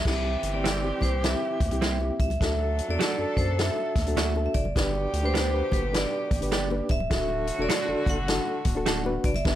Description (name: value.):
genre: uptempo 1960s-style soul.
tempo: 102 BPM.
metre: 4/4.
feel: swing 64% on 8ths.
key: unclear.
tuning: A4 = 440 Hz.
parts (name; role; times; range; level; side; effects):
vibraphone with hard mallets; melody; 0.0-9.6 s; B4 to F#5; -30 LUFS; right 1 dB; none.
clear horn section; second line; 0.1-9.2 s; B2 to A4; -35 LUFS; right 1 dB; none.
reed electric piano; accompaniment; 0.1-9.6 s; B3 to B4; -32 LUFS; left 2 dB; fast tremolo.
saturated sub bass; bass; 0.1-9.6 s; C#1 to F#2; -29 LUFS; equal; none.
vintage drum kit; drums; 0.1-9.6 s; crash cymbal, hi-hat, kick drum, ride cymbal, snare drum; -28 LUFS; equal; none.
congas; percussion; 0.2-9.6 s; none; -40 LUFS; left 4 dB; none.
direct-recorded clean electric guitar; stabs; 0.6-9.0 s; F#3 to A4; -30 LUFS; right 8 dB; none.
room: light reverb, small room ambience.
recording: none.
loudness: -23 LUFS.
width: side -12 dB against mid.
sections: 0.1-9.5 A section.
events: none.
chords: 0.1 C; 2.4 D; 4.8 G; 7.1 D.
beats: | 0.05 0.64 1.23 1.82 | 2.41 3.00 3.58 4.17 | 4.76 5.35 5.93 6.52 | 7.11 7.70 8.28 8.87 | 9.46.